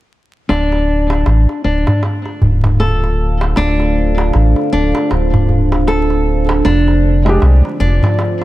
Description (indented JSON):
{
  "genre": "trip hop",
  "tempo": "78 BPM",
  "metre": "4/4",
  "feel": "swing 60% on 16ths",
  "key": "D minor",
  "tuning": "A4 = 440 Hz",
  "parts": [
    { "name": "deep dark ambient pad", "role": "sustained chords", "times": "2.5-8.4 s", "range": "D4 to F5", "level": "-19 LUFS", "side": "right 2 dB", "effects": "chorus, built-in reverb" },
    { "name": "nylon-string guitar", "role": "arpeggios", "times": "0.5-8.2 s", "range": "D4 to A4", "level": "-18 LUFS", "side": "left 1 dB", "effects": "low-pass filter, tape echo" },
    { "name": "round analog bass", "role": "bass", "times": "0.5-8.0 s", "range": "D1 to C2", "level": "-13 LUFS", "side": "equal", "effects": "none" },
    { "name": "darbuka", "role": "percussion", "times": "0.5-8.4 s", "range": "none", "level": "-17 LUFS", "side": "equal", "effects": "none" },
    { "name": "felt-muted upright piano", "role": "accompaniment", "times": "7.3-7.6 s", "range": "Ab3 to G4", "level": "-19 LUFS", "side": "equal", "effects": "tremolo, tape echo" }
  ],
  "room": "light reverb, small room ambience",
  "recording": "dark, warm production, vinyl crackle",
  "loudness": "-11 LUFS",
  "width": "side -16 dB against mid",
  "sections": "0.5-8.4 A section",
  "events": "none",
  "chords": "0.5 Dm7; 6.6 Fm6"
}